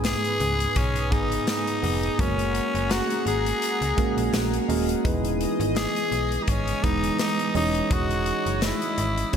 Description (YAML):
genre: 1980s-style pop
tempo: 84 BPM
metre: 4/4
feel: swing 55% on 16ths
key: unclear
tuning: A4 = 440 Hz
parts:
  - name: tine electric piano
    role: accompaniment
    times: 0.0-9.4 s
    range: G#2 to C#5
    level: -28 LUFS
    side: right 4 dB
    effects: wide subtle chorus, slapback echo
  - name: chorused pulse-width pad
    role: sustained chords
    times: 0.0-9.4 s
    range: G#4 to D#6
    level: -33 LUFS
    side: left 3 dB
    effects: none
  - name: slap-like FM bass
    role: bass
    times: 0.0-9.4 s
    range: D#1 to C#2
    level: -28 LUFS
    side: left 1 dB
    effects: none
  - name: modern studio drum kit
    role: drums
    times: 0.0-9.4 s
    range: hi-hat, kick drum, snare drum, tambourine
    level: -28 LUFS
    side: left 1 dB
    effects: none
  - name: group handclap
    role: percussion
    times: 0.0-8.8 s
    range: none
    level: barely audible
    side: none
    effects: none
  - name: raspy tenor saxophone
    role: melody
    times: 0.1-9.4 s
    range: C#4 to G#4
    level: -27 LUFS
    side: left 2 dB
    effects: slapback echo
room: moderate lush hall reverb, RT60 3.0 s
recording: big arena sound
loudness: -22 LUFS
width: side -8 dB against mid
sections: 0.0-9.4 A section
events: none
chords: 0.0 G#m; 2.2 F#add9; 5.0 Emaj7; 7.5 C#madd9/E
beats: 0.05 0.76 1.48 | 2.19 2.91 3.62 4.33 | 5.05 5.76 6.48 7.19 | 7.91 8.62 9.33